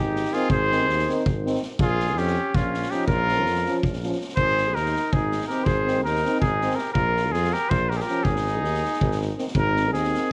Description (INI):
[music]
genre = balkan folk, Balkan brass band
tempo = 325 BPM (eighths)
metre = 7/8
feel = straight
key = Ab major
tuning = A4 = 440 Hz
[part]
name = cornet with straight mute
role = melody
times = 0.0-10.3 s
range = F4 to C5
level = -27 LUFS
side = equal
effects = none
[part]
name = clear trumpet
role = second line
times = 0.0-9.4 s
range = Db4 to Ab4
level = -34 LUFS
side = equal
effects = slapback echo
[part]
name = clear tuba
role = bass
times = 0.0-10.1 s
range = Ab1 to F2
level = -30 LUFS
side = equal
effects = none
[part]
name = street-band drum kit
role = percussion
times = 0.2-10.2 s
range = kick drum, snare drum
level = -30 LUFS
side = equal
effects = none
[part]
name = clear euphonium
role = accompaniment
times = 0.3-10.3 s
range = Eb3 to F3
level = -34 LUFS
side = equal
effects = none
[part]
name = warm trombone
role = accompaniment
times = 0.3-10.3 s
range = C4 to Db4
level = -33 LUFS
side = equal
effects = none
[sound]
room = moderate recital hall reverb, RT60 1.5 s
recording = none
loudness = -23 LUFS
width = mono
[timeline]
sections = 0.0-9.6 A section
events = none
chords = 0.0 Ab; 1.8 Bbm; 4.4 Ab; 7.0 Bb5; 8.3 Ab5; 9.6 Ab